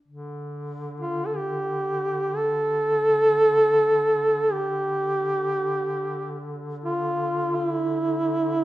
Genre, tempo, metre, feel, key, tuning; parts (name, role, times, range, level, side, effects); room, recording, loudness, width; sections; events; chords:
caucasian folk, Caucasian lament; free time; D minor; A4 = 436 Hz
warm duduk; drone; 0.1-8.6 s; D3; -33 LUFS; equal
mellow duduk; melody; 1.0-8.6 s; E4 to A4; -21 LUFS; right 1 dB
moderate recital hall reverb, RT60 1.5 s; minimal, uncompressed stereo recording; -21 LUFS; side -15 dB against mid
0.1-8.6 A section